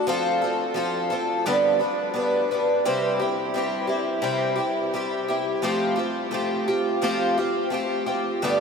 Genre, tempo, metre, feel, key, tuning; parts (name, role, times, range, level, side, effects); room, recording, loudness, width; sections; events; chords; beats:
rock; 86 BPM; 4/4; straight; C major; A4 = 440 Hz
picked twelve-string acoustic guitar; solo; 0.0-8.6 s; G2 to B4; -22 LUFS; equal; ping-pong delay
wet huge ambient reverb, RT60 9.3 s; dreamy mix soaked in reverb; -22 LUFS; side -5 dB against mid
0.0-2.8 A section; 2.8-8.6 B section
0.1 F; 1.5 G; 2.8 C; 5.6 Fadd9
| 0.06 0.76 1.45 2.15 | 2.84 3.54 4.24 4.94 | 5.63 6.33 7.03 7.73 | 8.43